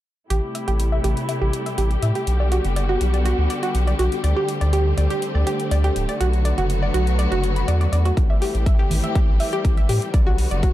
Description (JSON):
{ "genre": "progressive house", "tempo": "122 BPM", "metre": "4/4", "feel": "straight", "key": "A dorian", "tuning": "A4 = 440 Hz", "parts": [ { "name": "warm studio string section", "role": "sustained chords", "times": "0.3-10.7 s", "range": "C3 to G4", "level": "-26 LUFS", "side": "left 2 dB", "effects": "sidechain pumping, low-pass filter" }, { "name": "analog pluck", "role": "arpeggios", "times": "0.3-10.7 s", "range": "F#4 to B5", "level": "-25 LUFS", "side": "right 1 dB", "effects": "chorus, sidechain pumping, dub echo" }, { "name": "round analog bass", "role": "bass", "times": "0.3-10.7 s", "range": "D1 to A2", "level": "-20 LUFS", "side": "equal", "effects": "sidechain pumping" }, { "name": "electronic hi-hat", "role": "drums", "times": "0.3-10.7 s", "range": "none", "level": "-35 LUFS", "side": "equal", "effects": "none" }, { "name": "electronic kick drum", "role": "drums", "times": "8.2-10.7 s", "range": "none", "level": "-17 LUFS", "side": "equal", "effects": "none" }, { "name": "congas", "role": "percussion", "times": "8.9-9.0 s", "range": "none", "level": "-29 LUFS", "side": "right 3 dB", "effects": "sidechain pumping on perc" } ], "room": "light reverb", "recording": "dark, warm production", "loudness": "-18 LUFS", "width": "side -14 dB against mid", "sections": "0.3-10.7 A section", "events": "filter sweep on analog synth bass 0.3-10.7; filter sweep on synth arpeggio sound 0.3-10.7", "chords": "0.3 Am7; 2.3 Gmaj7; 4.2 D7sus4; 6.2 Bm7; 8.2 Am7; 10.1 Gmaj7", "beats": "| 0.30 0.80 1.29 1.78 | 2.27 2.76 3.25 3.75 | 4.24 4.73 5.22 5.71 | 6.21 6.70 7.19 7.68 | 8.17 8.66 9.16 9.65 | 10.14 10.63" }